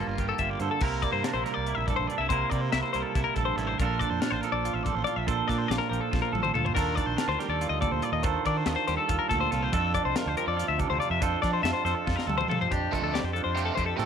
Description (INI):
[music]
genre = math rock and midwest emo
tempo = 282 BPM (eighths)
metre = 7/8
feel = straight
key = F major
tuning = A4 = 439 Hz
[part]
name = semi-hollow electric guitar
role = accompaniment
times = 0.0-14.1 s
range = F2 to Bb4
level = -30 LUFS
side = right 10 dB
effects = none
[part]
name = twelve-string electric guitar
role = arpeggios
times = 0.0-14.1 s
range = F4 to E5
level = -30 LUFS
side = left 11 dB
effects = none
[part]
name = fuzz fingered electric bass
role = bass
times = 0.0-14.1 s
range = G1 to F3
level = -32 LUFS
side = equal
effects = overdrive
[part]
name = crisp fusion drum kit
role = drums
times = 0.2-14.1 s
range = crash cymbal, hi-hat, kick drum, snare drum, toms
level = -32 LUFS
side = left 2 dB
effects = none
[part]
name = overdriven electric guitar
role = riff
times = 12.9-14.1 s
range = C3 to C4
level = -32 LUFS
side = right 10 dB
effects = none
[sound]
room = small room reverb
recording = 1960s-style stereo with parts hard left and right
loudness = -25 LUFS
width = side -8 dB against mid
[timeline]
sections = 0.8-12.7 A section; 12.7-14.1 B section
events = drum fill 6.1-6.8, 12.1-12.7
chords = 0.0 F69; 0.8 C7; 3.8 Bbmaj7; 6.8 Ebmaj9#11; 9.7 F6; 12.7 F69